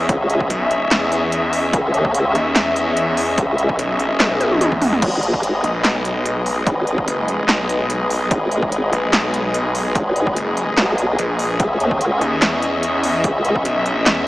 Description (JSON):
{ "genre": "heavy wobble dubstep", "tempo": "146 BPM", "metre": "4/4", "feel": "half-time", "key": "G# minor", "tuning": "A4 = 440 Hz", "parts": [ { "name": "rich studio string section", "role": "sustained chords", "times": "0.0-14.3 s", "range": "G#3 to E5", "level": "-20 LUFS", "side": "left 1 dB", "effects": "sidechain pumping, low-pass filter" }, { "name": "snarling distorted saw bass", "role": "bass", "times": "0.0-14.3 s", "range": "F#1 to E2", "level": "-21 LUFS", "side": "equal", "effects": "distortion, overdrive" }, { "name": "formant-sweep wobble bass", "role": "bass", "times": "0.1-13.6 s", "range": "G#1 to D#2", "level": "-18 LUFS", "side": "equal", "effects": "chorus, overdrive" }, { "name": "big-room dance drum kit", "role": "drums", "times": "0.1-14.2 s", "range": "crash cymbal, handclaps, hi-hat, snare drum, toms", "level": "-19 LUFS", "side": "equal", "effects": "overdrive" }, { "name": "electronic kick drum", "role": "drums", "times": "0.1-13.6 s", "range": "none", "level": "-24 LUFS", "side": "equal", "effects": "overdrive" } ], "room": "light reverb", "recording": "small speaker sound", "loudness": "-16 LUFS", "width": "side -17 dB against mid", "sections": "0.0-14.3 A section", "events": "drum fill 4.2-5.0", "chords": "0.0 C#madd9; 5.0 G#m; 11.6 C#madd9", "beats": "| 0.09 0.50 0.91 1.32 | 1.73 2.15 2.56 2.97 | 3.38 3.79 4.20 4.61 | 5.02 5.43 5.84 6.25 | 6.67 7.08 7.49 7.90 | 8.31 8.72 9.13 9.54 | 9.95 10.36 10.78 11.19 | 11.60 12.01 12.42 12.83 | 13.24 13.65 14.06" }